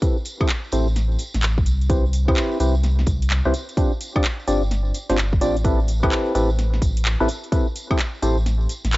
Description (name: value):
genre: UK garage, two-step garage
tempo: 128 BPM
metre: 4/4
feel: swing 64% on 16ths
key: A minor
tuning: A4 = 440 Hz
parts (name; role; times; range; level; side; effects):
- percussive organ stab; stabs; 0.0-8.4 s; C4 to D5; -23 LUFS; equal; wide subtle chorus, analog delay
- electronic kick drum; drums; 0.0-8.0 s; none; -21 LUFS; equal; none
- house drum kit; drums; 0.0-9.0 s; handclaps, hi-hat, snare drum, woodblock; -27 LUFS; equal; none
- tambourine; percussion; 0.0-9.0 s; none; -39 LUFS; right 1 dB; none
- saturated sub bass; bass; 0.7-9.0 s; G1 to C2; -20 LUFS; equal; none
room: digital ambience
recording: dry, gritty hardware recording, cassette tape, nothing above 7.8 kHz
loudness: -18 LUFS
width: side -19 dB against mid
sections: 0.0-9.0 A section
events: filter sweep on synth stab 0.0-9.0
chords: 0.0 Am9; 1.9 Cmaj7; 3.8 G7sus4; 5.6 Am9